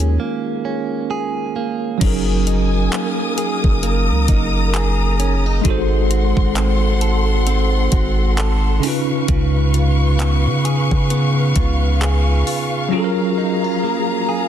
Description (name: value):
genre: contemporary R&B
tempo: 66 BPM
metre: 4/4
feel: swing 58% on 16ths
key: unclear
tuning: A4 = 440 Hz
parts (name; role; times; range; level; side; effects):
- bell-like tine electric piano; accompaniment; 0.0-14.5 s; C#3 to B#4; -22 LUFS; equal; medium stereo tremolo
- direct-recorded clean electric guitar; arpeggios; 0.0-14.5 s; C#3 to A4; -24 LUFS; right 7 dB; tape echo
- long sustained 808-style bass; bass; 0.0-12.4 s; F#1 to C#3; -17 LUFS; equal; none
- trap drum kit; drums; 0.0-12.7 s; crash cymbal, handclaps, hi-hat, kick drum; -21 LUFS; equal; none
- warm studio string section; sustained chords; 2.0-14.5 s; F#3 to D#6; -24 LUFS; left 2 dB; none
room: digital ambience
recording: dense, heavily limited modern master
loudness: -15 LUFS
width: side -10 dB against mid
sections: 0.0-2.0 A section; 2.0-14.5 B section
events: tine electric piano solo 0.0-2.0; break 0.2-2.0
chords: 0.0 D#7sus4; 2.0 F#69; 5.7 G#7b9; 8.8 C#7; 12.9 F#maj9